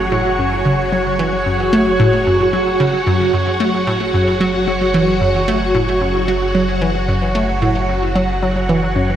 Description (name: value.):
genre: ambient, sequencer-driven space music.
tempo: 112 BPM.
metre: 4/4.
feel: straight.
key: unclear.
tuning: A4 = 440 Hz.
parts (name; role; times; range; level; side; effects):
phased string machine; sustained chords; 0.0-9.2 s; F#3 to C#5; -17 LUFS; equal; ensemble chorus, phaser.
round analog bass; bass; 0.0-9.2 s; F#1; -24 LUFS; equal; tube saturation.
bubbling stepped-filter texture; texture; 0.0-9.2 s; C#5; -22 LUFS; right 2 dB; chorus, built-in reverb.
hollow square pluck; riff; 0.1-9.2 s; F#2 to A3; -18 LUFS; equal; chorus, tape echo.
room: wet shimmer reverb, RT60 8.2 s.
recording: none.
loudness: -14 LUFS.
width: side -10 dB against mid.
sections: 0.0-9.2 A section.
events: none.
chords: 0.0 F#sus2.